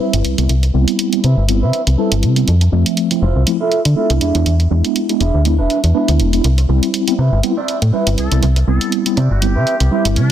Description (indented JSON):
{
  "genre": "filtered disco house",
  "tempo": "121 BPM",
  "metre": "4/4",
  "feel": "swing 55% on 16ths",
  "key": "C major",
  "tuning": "A4 = 440 Hz",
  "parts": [
    { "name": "mellow tine electric piano", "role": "accompaniment", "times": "0.0-10.3 s", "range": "F3 to E5", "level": "-18 LUFS", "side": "right 1 dB", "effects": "medium stereo tremolo, phaser, low-pass filter" },
    { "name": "mellow electric guitar", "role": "riff", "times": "0.0-10.3 s", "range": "C4 to D5", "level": "-21 LUFS", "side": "right 3 dB", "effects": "spring reverb, low-pass filter" },
    { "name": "slap-like FM bass", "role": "bass", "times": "0.1-10.3 s", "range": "E1 to D3", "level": "-13 LUFS", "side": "equal", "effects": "low-pass filter" },
    { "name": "electronic hi-hat", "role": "drums", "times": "0.1-10.3 s", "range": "none", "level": "-23 LUFS", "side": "right 2 dB", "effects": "none" },
    { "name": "muted trumpet section", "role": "melody", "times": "8.2-10.3 s", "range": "D4 to A4", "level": "-27 LUFS", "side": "left 2 dB", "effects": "low-pass filter" }
  ],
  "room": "light reverb",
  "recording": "dense, heavily limited modern master",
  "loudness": "-12 LUFS",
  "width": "side -10 dB against mid",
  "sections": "0.0-10.3 A section",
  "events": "filter sweep 0.0-10.3",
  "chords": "0.0 Cmaj7; 2.5 Fmaj7; 4.2 E7; 6.4 Cmaj7",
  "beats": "0.00 | 0.49 0.99 1.49 1.98 | 2.48 2.97 3.47 3.96 | 4.46 4.96 5.45 5.95 | 6.44 6.94 7.44 7.93 | 8.43 8.92 9.42 9.91"
}